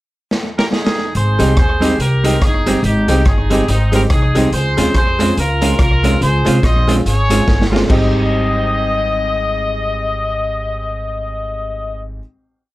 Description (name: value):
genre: ska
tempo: 142 BPM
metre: 4/4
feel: swing 59% on 8ths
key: Ab major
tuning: A4 = 440 Hz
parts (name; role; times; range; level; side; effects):
- raw garage drum kit; drums; 0.3-8.0 s; crash cymbal, hi-hat, kick drum, rim click, snare drum; -18 LUFS; equal; slapback echo
- clear horn section; melody; 0.6-12.0 s; C4 to Eb5; -19 LUFS; left 1 dB; none
- upright bass; bass; 1.2-12.2 s; G1 to F2; -17 LUFS; equal; none
- clean electric guitar; accompaniment; 1.4-12.3 s; G3 to F4; -21 LUFS; right 4 dB; none
- tack piano; stabs; 1.4-12.2 s; Ab3 to G4; -21 LUFS; left 2 dB; none
room: light reverb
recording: none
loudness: -13 LUFS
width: side -17 dB against mid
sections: 0.0-1.2 pickup bar; 1.2-7.9 head; 7.9-11.3 final chord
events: drum fill 0.3-1.2, 7.5-7.9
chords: 0.0 Ab5; 1.2 Abmaj7; 4.5 Dbmaj7; 7.9 Abmaj7